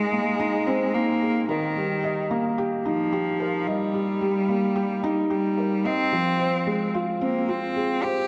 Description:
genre	electronica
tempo	110 BPM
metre	4/4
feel	straight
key	unclear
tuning	A4 = 440 Hz
part	warm cello	melody	0.0-8.3 s	Eb3 to G4	-28 LUFS	equal	delay
part	felt-muted upright piano	riff	0.0-8.3 s	F3 to Eb5	-27 LUFS	equal	delay
room	wet plate reverb, RT60 3.2 s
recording	dreamy mix soaked in reverb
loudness	-24 LUFS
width	mono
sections	0.0-8.3 A section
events	none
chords	0.0 Abadd9; 1.8 Eb; 6.1 Fm

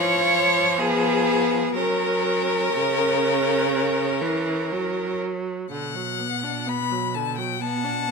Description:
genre	classical, slow romantic movement for string quartet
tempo	60-70 BPM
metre	4/4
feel	rubato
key	unclear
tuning	A4 = 435 Hz
part	clear violin	melody	0.0-8.1 s	G#4 to B5	-26 LUFS	left 12 dB	none
part	rich violin	second line	0.0-8.1 s	B3 to F#5	-26 LUFS	left 5 dB	none
part	rich viola	accompaniment	0.0-8.1 s	C#3 to D4	-26 LUFS	right 3 dB	none
part	rich cello	bass	0.0-8.1 s	B2 to C#5	-25 LUFS	right 6 dB	none
room	light reverb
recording	close, detailed microphones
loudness	-20 LUFS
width	side -4 dB against mid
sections	0.0-5.7 A section; 5.7-8.1 B section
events	none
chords	0.0 C#7/E#; 1.8 F#; 5.7 Bm

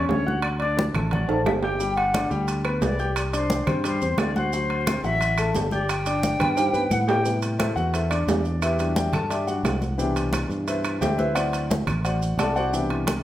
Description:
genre	latin, salsa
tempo	176 BPM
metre	4/4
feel	straight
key	unclear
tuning	A4 = 440 Hz
part	silver concert flute	melody	0.0-7.4 s	C5 to G5	-27 LUFS	left 1 dB	none
part	clear grand piano	accompaniment	0.0-13.2 s	B2 to G6	-26 LUFS	left 2 dB	none
part	fingered electric bass	bass	0.0-13.2 s	G1 to A2	-27 LUFS	equal	none
part	congas	percussion	0.1-13.2 s	none	-28 LUFS	equal	none
part	timbales	percussion	0.1-13.2 s	none	-30 LUFS	right 4 dB	none
part	claves	percussion	0.4-13.2 s	none	-40 LUFS	right 5 dB	none
part	maracas	percussion	1.8-13.2 s	none	-39 LUFS	right 6 dB	none
room	wet large studio reverb, RT60 1.0 s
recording	band playing live in one room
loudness	-21 LUFS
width	side -13 dB against mid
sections	0.0-7.3 A section; 7.3-13.2 B section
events	drum fill 1.3-1.8, 6.6-7.3; grand piano solo 7.3-13.2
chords	0.4 D; 1.8 G; 3.2 Csus2; 4.5 D7; 5.9 Gadd9; 7.3 Am7; 8.6 Em7; 10.0 Cmaj7; 11.4 D7

